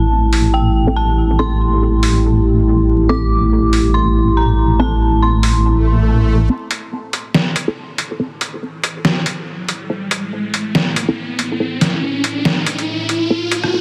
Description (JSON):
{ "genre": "deep dubstep", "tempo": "141 BPM", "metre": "4/4", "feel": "swing 56% on 16ths, half-time", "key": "A minor", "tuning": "A4 = 439 Hz", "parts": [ { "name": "dark detuned synth bell", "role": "melody", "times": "0.0-5.6 s", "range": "G5 to D6", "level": "-25 LUFS", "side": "equal", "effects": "chorus, tremolo, vintage 12-bit sampler grit, dub echo" }, { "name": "dark analog pad", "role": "sustained chords", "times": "0.0-13.8 s", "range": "A3 to C5", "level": "-22 LUFS", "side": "equal", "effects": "chorus, phaser" }, { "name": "deep soft wobble bass", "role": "bass", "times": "0.0-6.5 s", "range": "A1", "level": "-16 LUFS", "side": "equal", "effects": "chorus, tube saturation" }, { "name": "trip hop sampler-style drum kit", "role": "drums", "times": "0.3-13.7 s", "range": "hi-hat, rim click, snare drum", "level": "-20 LUFS", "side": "equal", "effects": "overdrive" }, { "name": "filtered dub chord stab", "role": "stabs", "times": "0.9-13.4 s", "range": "C4 to A4", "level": "-26 LUFS", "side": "equal", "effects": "phaser, dub echo" }, { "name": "swell and riser", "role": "sound effects", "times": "5.8-13.8 s", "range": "none", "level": "-25 LUFS", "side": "equal", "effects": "none" } ], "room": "light reverb, digital ambience", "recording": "heavily compressed radio sound, vinyl crackle", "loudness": "-16 LUFS", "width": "mono", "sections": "0.0-6.5 A section; 6.5-13.8 B section", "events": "filter sweep on synth stab 0.0-6.5, 6.5-13.8; swell 5.8-6.5; build-up 6.5-13.8; riser 6.5-13.8; filter sweep on analog synth pad 6.5-13.8", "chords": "0.0 Am" }